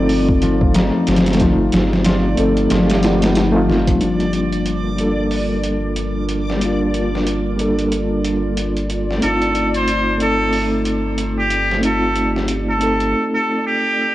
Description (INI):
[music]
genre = trip hop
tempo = 92 BPM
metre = 4/4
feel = swing 59% on 16ths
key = G minor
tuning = A4 = 445 Hz
[part]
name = reed electric piano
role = accompaniment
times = 0.0-14.1 s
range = G3 to A4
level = -19 LUFS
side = equal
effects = overdrive, fast tremolo, vintage 12-bit sampler grit, cassette tape
[part]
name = warbly tape-like pad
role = sustained chords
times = 0.0-13.1 s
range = G3 to Bb4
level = -26 LUFS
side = right 2 dB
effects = chorus, built-in reverb, cassette tape
[part]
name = concert harp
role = arpeggios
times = 0.0-5.7 s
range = F3 to G4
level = -22 LUFS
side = left 4 dB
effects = vintage 12-bit sampler grit, cassette tape, tape echo
[part]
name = soft dub sub bass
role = bass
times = 0.0-13.1 s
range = G1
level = -23 LUFS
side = equal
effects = none
[part]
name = backwards swelling texture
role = texture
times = 0.0-13.1 s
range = D5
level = -30 LUFS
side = equal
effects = built-in reverb, cassette tape
[part]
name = trip hop sampler-style drum kit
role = drums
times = 0.1-13.1 s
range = hi-hat, kick drum, snare drum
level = -20 LUFS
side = equal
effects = overdrive, high-pass filter on hats, cassette tape, high-pass filter on kick, high-pass filter on snare, high-pass filter on room
[part]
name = trumpet with straight mute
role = melody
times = 9.2-14.1 s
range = G4 to C5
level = -19 LUFS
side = equal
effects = cassette tape, tape echo
[sound]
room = light reverb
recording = home recording on cassette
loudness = -15 LUFS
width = side -15 dB against mid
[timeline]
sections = 0.0-4.0 A section; 4.0-14.1 B section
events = filter sweep on reed electric piano 0.0-4.0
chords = 0.0 F7/G; 4.0 Gm7; 9.2 F7/G